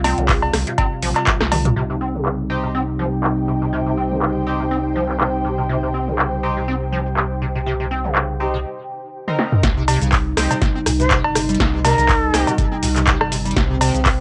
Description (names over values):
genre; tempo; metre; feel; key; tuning
acid house; 122 BPM; 4/4; swing 55% on 16ths; C phrygian; A4 = 438 Hz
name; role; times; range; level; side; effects
warm analog pad; sustained chords; 0.0-14.2 s; C3 to F4; -26 LUFS; equal; chorus, sidechain pumping, cassette tape
liquid acid bass; riff; 0.0-14.0 s; Bb2 to C4; -27 LUFS; equal; overdrive, lush chorus, sidechain pumping, cassette tape, analog delay
saturated sub bass; bass; 0.0-14.2 s; G1 to C2; -27 LUFS; equal; tube saturation, sidechain pumping
electro analog drum machine; drums; 0.0-14.2 s; cabasa, cowbell, crash cymbal, handclaps, hi-hat, rim click, snare drum, toms; -22 LUFS; equal; low-pass filter on snare, low-pass filter on hats, low-pass filter on perc, low-pass filter on toms, low-pass filter on cymbals
electronic kick drum; drums; 0.3-1.4, 9.6-14.2 s; none; -22 LUFS; equal; none
ethereal airy pad; texture; 2.9-8.6 s; Eb4 to G5; -29 LUFS; equal; ensemble chorus, built-in reverb, sidechain pumping, cassette tape
band-passed chord stab; stabs; 2.5-12.5 s; C4 to Bb4; -28 LUFS; equal; phaser, lush chorus, cassette tape, analog delay
concert flute; melody; 11.0-12.5 s; Bb4 to C5; -24 LUFS; equal; cassette tape, analog delay
room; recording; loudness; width
moderate small room reverb, RT60 0.5 s; home recording on cassette; -19 LUFS; mono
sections
0.0-1.8 A section; 1.8-9.6 B section; 9.6-14.2 C section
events
drum fill 1.5, 9.3-9.6; drop 9.6-14.2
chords
0.0 C5; 1.8 Cm